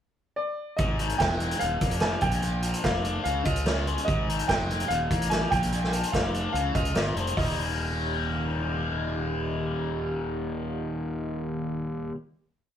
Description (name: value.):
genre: indie rock.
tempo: 146 BPM.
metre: 4/4.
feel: straight.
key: Eb major.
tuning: A4 = 444 Hz.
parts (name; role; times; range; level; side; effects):
clear upright piano; melody; 0.4-12.1 s; Db5 to Ab5; -30 LUFS; right 1 dB; none.
biting overdriven guitar; riff; 0.8-12.2 s; Eb2 to F4; -30 LUFS; left 2 dB; phaser.
fuzz fingered electric bass; bass; 0.8-12.1 s; Eb1 to Db2; -30 LUFS; equal; overdrive.
vintage drum kit; drums; 0.8-7.5 s; hi-hat, kick drum, snare drum; -29 LUFS; equal; none.
room: moderate studio reverb, RT60 0.6 s.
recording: band playing live in one room.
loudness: -25 LUFS.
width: side -9 dB against mid.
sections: 0.0-0.8 pickup bar; 0.8-7.4 interlude; 7.4-10.6 final chord.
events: none.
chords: 0.0 N.C.; 0.8 Absus2; 1.6 Ebsus2; 2.2 Bb; 3.3 Db; 4.1 Absus2; 4.9 Ebsus2; 5.5 Bb; 6.5 Db; 7.0 Bb; 7.4 Eb.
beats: 0.39 | 0.79 1.20 1.61 2.02 | 2.43 2.84 3.25 3.67 | 4.08 4.49 4.90 5.31 | 5.72 6.13 6.54 6.95 | 7.37 7.78 8.19 8.60 | 9.01 9.41 9.82 10.23.